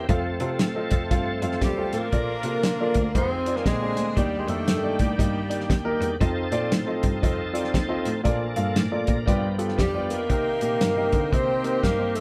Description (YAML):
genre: uptempo gospel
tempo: 118 BPM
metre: 4/4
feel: swing 61% on 8ths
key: unclear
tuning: A4 = 440 Hz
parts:
  - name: bright tonewheel organ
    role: sustained chords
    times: 0.0-12.2 s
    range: D3 to D5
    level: -34 LUFS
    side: equal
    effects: slow rotary speaker, overdrive, chorus vibrato
  - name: clear cello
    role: bass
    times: 0.0-12.2 s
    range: D2 to D3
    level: -32 LUFS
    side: equal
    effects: none
  - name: warm grand piano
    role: accompaniment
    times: 0.1-12.2 s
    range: G2 to G5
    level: -31 LUFS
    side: equal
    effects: none
  - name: warm soul drum kit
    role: drums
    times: 0.1-12.2 s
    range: hi-hat, kick drum, snare drum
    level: -28 LUFS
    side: equal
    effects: none
  - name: breathy tenor saxophone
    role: melody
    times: 1.6-6.0, 9.8-12.2 s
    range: G3 to C4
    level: -30 LUFS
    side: equal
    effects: none
  - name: clear saxophone section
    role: melody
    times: 1.6-6.0, 9.8-12.2 s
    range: Bb3 to C5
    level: -33 LUFS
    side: equal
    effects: none
room: moderate studio reverb, RT60 0.8 s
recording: band playing live in one room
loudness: -24 LUFS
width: mono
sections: 0.0-12.2 A section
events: none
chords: 0.1 F; 2.1 Bbmaj7; 3.1 Fm7; 3.7 Bb9; 4.2 Ebmaj7; 6.2 F7; 8.3 Bbmaj7; 9.3 G7; 10.3 Cm7